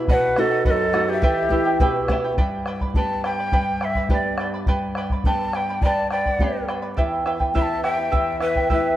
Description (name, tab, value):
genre	andean folk, Andean ensemble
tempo	104 BPM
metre	2/4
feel	straight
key	unclear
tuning	A4 = 442 Hz
part	charango	accompaniment	0.0-9.0 s	E4 to B5	-26 LUFS	right 2 dB	none
part	nylon-string guitar	accompaniment	0.0-9.0 s	E2 to D5	-26 LUFS	equal	none
part	breathy large quena	melody	0.1-9.0 s	G4 to B5	-25 LUFS	equal	none
part	breathy bright large pan pipes	second line	0.1-2.1, 5.8-9.0 s	B4 to F#5	-26 LUFS	left 1 dB	none
part	bombo	percussion	0.1-8.8 s	none	-24 LUFS	equal	none
room	moderate plate reverb, RT60 2.8 s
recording	heard from further back in the room, vinyl crackle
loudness	-19 LUFS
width	side -13 dB against mid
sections	0.0-2.4 A section; 2.4-9.0 B section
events	nylon-string guitar fill 1.5-2.4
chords	0.1 B; 1.2 Em; 2.4 G; 7.0 Em